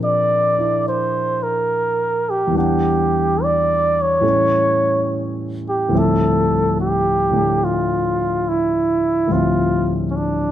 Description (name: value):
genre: jazz ballad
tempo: 71 BPM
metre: 4/4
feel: swing 66% on 8ths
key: D minor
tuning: A4 = 441 Hz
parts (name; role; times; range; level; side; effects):
- trumpet with bucket mute; melody; 0.0-10.5 s; C#4 to D5; -18 LUFS; right 1 dB; plate reverb
- warm concert grand piano; accompaniment; 0.0-10.5 s; D2 to F#5; -20 LUFS; left 1 dB; none
room: moderate studio ambience, RT60 0.5 s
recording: none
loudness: -16 LUFS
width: side -11 dB against mid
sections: 0.0-10.5 A section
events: none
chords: 0.0 Bbadd9; 2.6 Em9; 4.2 A7; 5.9 Dm11